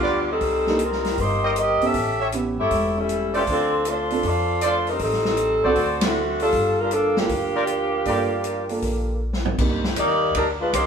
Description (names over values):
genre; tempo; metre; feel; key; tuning
jazz, big band swing; 157 BPM; 4/4; swing 66% on 8ths; G minor; A4 = 439 Hz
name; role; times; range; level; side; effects
mellow saxophone section; melody; 0.0-10.9 s; D3 to E5; -21 LUFS; equal; none
mellow trumpet section; stabs; 0.0-8.7 s; F4 to E5; -25 LUFS; right 1 dB; none
upright bass; bass; 0.0-10.9 s; E1 to F2; -29 LUFS; equal; none
swinging big-band drum kit; drums; 0.4-10.9 s; crash cymbal, hi-hat, kick drum, ride cymbal, snare drum, toms; -28 LUFS; equal; none
warm grand piano; accompaniment; 0.7-9.8 s; Bb3 to A4; -27 LUFS; right 3 dB; none
room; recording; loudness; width
wet stone room reverb, RT60 1.0 s; band playing live in one room; -19 LUFS; side -7 dB against mid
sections
0.0-9.6 A section; 9.6-10.9 B section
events
band accent 6.0; drum fill 9.2-9.6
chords
0.4 Cm7; 1.9 A7; 3.5 Dm7; 5.0 Am7b5; 5.8 D7; 6.5 Gm7; 9.6 Cm9